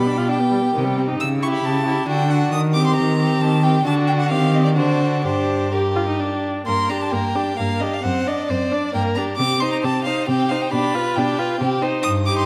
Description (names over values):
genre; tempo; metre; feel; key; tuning
quick classical-period movement for string quartet; 134 BPM; 3/4; rubato; G minor; A4 = 439 Hz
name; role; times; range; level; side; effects
clear violin; melody; 0.0-12.5 s; Bb4 to E6; -27 LUFS; equal; none
rich violin; second line; 0.0-12.5 s; F#4 to D5; -27 LUFS; equal; none
rich viola; accompaniment; 0.0-12.5 s; Eb3 to G4; -25 LUFS; equal; none
rich cello; bass; 0.0-12.4 s; F#2 to Eb3; -24 LUFS; equal; none
room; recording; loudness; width
wet scoring stage reverb, RT60 1.6 s; none; -20 LUFS; mono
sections
0.0-6.7 A section; 6.7-12.5 A section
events
none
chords
0.0 G7/B; 0.8 Cm; 1.2 A7/C#; 2.1 D; 2.5 Cm/Eb; 3.9 D; 4.3 Cm/Eb; 4.8 D7; 5.2 Gm; 8.0 D7/F#; 8.9 Gm; 9.4 Cm; 10.7 G7/B; 11.6 Cm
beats
0.30 0.75 | 1.20 1.64 2.08 | 2.52 2.96 3.41 | 3.86 4.31 4.77 | 5.25 5.73 6.20 | 6.67 7.13 7.59 | 8.04 8.50 8.95 | 9.39 9.84 10.28 | 10.72 11.16 11.60 | 12.04